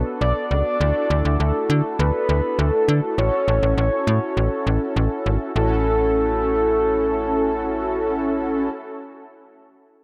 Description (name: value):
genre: synth-pop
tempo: 101 BPM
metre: 4/4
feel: straight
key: A major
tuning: A4 = 440 Hz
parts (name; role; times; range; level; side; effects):
- mellow synth brass; accompaniment; 0.0-8.7 s; B3 to A4; -26 LUFS; equal; chorus
- slap-like FM bass; bass; 0.0-8.7 s; G#1 to D3; -24 LUFS; equal; none
- soft octave-layered synth lead; melody; 0.2-8.7 s; A4 to D5; -25 LUFS; equal; chorus, diffuse ambient delay
room: wet lush hall reverb, RT60 2.7 s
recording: dreamy mix soaked in reverb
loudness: -21 LUFS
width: mono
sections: 0.0-5.6 A section; 5.6-7.9 B section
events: none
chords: 0.0 Bm7; 0.8 Dadd9; 3.2 A6